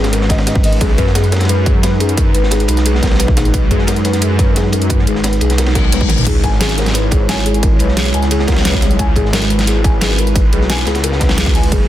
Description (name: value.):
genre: dark technical drum and bass.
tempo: 176 BPM.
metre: 4/4.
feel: straight.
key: unclear.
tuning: A4 = 441 Hz.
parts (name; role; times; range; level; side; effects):
dark analog pad; sustained chords; 0.0-11.9 s; F#3 to C#5; -20 LUFS; equal; chorus, phaser, vintage 12-bit sampler grit, sidechain pumping.
felt-muted upright piano; arpeggios; 0.0-11.8 s; G#4 to G#5; -22 LUFS; left 4 dB; sidechain pumping, low-pass filter, tape echo.
wide detuned saw bass; bass; 0.0-11.9 s; F#1 to F#2; -16 LUFS; equal; chorus.
crunchy breakbeat drum kit; drums; 0.0-11.8 s; hi-hat, ride cymbal, snare drum; -25 LUFS; equal; high-pass filter on cymbals, high-pass filter on hats, high-pass filter on snare, high-pass filter on room.
dubstep drum kit; drums; 0.0-11.8 s; crash cymbal, hi-hat, snare drum, toms; -19 LUFS; equal; overdrive.
electronic kick drum; drums; 0.3-11.8 s; none; -14 LUFS; equal; overdrive.
reverse cymbal; sound effects; 5.7-6.3 s; none; -23 LUFS; left 7 dB; none.
room: light reverb.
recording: dense, heavily limited modern master.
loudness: -11 LUFS.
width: side -13 dB against mid.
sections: 0.0-11.9 A section.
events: filter sweep on felt piano 0.0-11.9; reverse cymbal 5.7-6.3; drum fill 6.0.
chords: 0.0 G#m; 0.8 B6; 6.3 C#m.